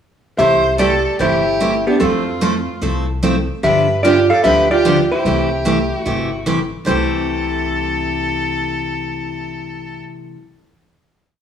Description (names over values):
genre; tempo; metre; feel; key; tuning
country, western swing; 148 BPM; 4/4; swing 66% on 8ths; C major; A4 = 440 Hz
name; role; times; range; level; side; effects
hollow-body jazz guitar; melody; 0.4-10.0 s; B3 to F5; -16 LUFS; right 1 dB; none
rich fiddle; second line; 0.4-10.0 s; D4 to D5; -23 LUFS; equal; none
picked steel-string acoustic guitar; accompaniment; 0.4-10.4 s; C3 to A4; -19 LUFS; equal; none
upright bass; bass; 0.4-10.0 s; G1 to G2; -26 LUFS; left 1 dB; none
room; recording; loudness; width
wet stone room reverb, RT60 1.0 s; band playing live in one room; -14 LUFS; side -8 dB against mid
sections
0.4-6.9 A section; 6.9-10.1 final chord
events
none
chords
0.4 C6; 2.0 Fmaj7; 3.6 G7; 5.3 C6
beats
| 0.39 0.79 1.20 1.61 | 2.01 2.42 2.83 3.23 | 3.64 4.04 4.45 4.85 | 5.25 5.66 6.06 6.46 | 6.87 7.27 7.67 8.07 | 8.48 8.88 9.29 9.69